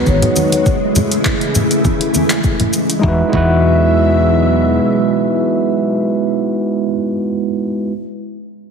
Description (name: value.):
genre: sunset chillout.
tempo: 101 BPM.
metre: 4/4.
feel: swing 55% on 16ths.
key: E major.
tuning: A4 = 440 Hz.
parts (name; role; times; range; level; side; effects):
vibraphone with soft mallets; melody; 0.0-6.9 s; C#5 to E5; -20 LUFS; left 2 dB; ping-pong delay.
overdriven tine electric piano; accompaniment; 0.0-7.9 s; G#3 to B4; -17 LUFS; moving between left 2 dB and right 4 dB; auto-pan, ping-pong delay.
soft string machine; sustained chords; 0.0-6.2 s; B2 to E5; -17 LUFS; right 1 dB; ensemble chorus.
woody fretless electric bass; bass; 0.1-4.8 s; G#1 to E2; -15 LUFS; equal; ensemble chorus.
deep house drum kit; drums; 0.1-3.0 s; handclaps, hi-hat, shaker; -20 LUFS; left 1 dB; studio reverb.
electronic kick drum; drums; 0.1-3.5 s; none; -18 LUFS; equal; studio reverb.
congas; percussion; 0.2-2.7 s; none; -20 LUFS; left 2 dB; none.
room: wet concert hall reverb, RT60 1.8 s.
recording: heavily compressed radio sound, multiband compression.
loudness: -12 LUFS.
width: side -6 dB against mid.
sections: 0.0-3.0 A section; 3.0-5.4 B section.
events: none.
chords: 0.0 G#m7; 0.7 Amaj7; 3.0 Eadd9.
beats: 0.06 | 0.66 1.25 1.85 2.44 | 3.04 3.63 4.22 4.82.